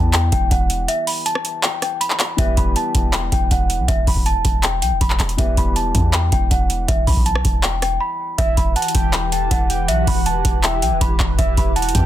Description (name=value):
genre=hip hop, trap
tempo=160 BPM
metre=4/4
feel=half-time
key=E minor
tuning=A4 = 440 Hz
part: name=celesta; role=melody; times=0.0-12.1 s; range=E5 to B5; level=-22 LUFS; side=left 1 dB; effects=low-pass filter
part: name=dark concert grand piano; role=accompaniment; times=0.0-8.4 s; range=E3 to B4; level=-30 LUFS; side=left 6 dB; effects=low-pass filter
part: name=warm 808-style bass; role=bass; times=0.0-12.1 s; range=E1 to E2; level=-20 LUFS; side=equal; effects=none
part: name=booming analog drum machine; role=drums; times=0.1-12.1 s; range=handclaps, hi-hat, kick drum, rim click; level=-18 LUFS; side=equal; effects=none
part: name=soft octave-layered synth lead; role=second line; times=8.4-12.1 s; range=E5 to A5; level=-26 LUFS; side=right 6 dB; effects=chorus, tape echo
part: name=hollow soft pad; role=sustained chords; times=8.6-12.1 s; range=E3 to B4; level=-26 LUFS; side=left 1 dB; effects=ensemble chorus
room=little or no reverb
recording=dense, heavily limited modern master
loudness=-16 LUFS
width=side -12 dB against mid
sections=0.0-8.4 A section; 8.4-12.1 B section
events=break 0.9-2.4, 8.0-8.4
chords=0.0 Em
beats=0.14 0.51 | 0.89 1.26 1.64 2.01 | 2.38 2.76 3.13 3.51 | 3.88 4.26 4.63 5.01 | 5.38 5.76 6.13 6.51 | 6.88 7.26 7.63 8.01 | 8.38 8.76 9.13 9.51 | 9.88 10.26 10.63 11.01 | 11.38 11.76